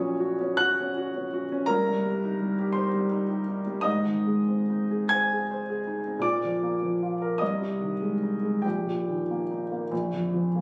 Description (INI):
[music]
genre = classical, romantic nocturne for solo piano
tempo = 45-58 BPM (dotted quarters)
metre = 6/8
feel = rubato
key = unclear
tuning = A4 = 440 Hz
[part]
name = warm concert grand piano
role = solo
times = 0.0-10.6 s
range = Bb1 to Ab6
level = -27 LUFS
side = equal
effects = none
[sound]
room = light reverb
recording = recorded on a phone in the room, club reverb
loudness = -27 LUFS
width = mono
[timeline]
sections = 0.0-10.6 A section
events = none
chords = 0.0 Gb/Bb; 1.7 Cm; 3.9 Ab; 6.2 Bb; 7.4 Ab/C; 8.6 Eb/Bb; 9.9 Bb5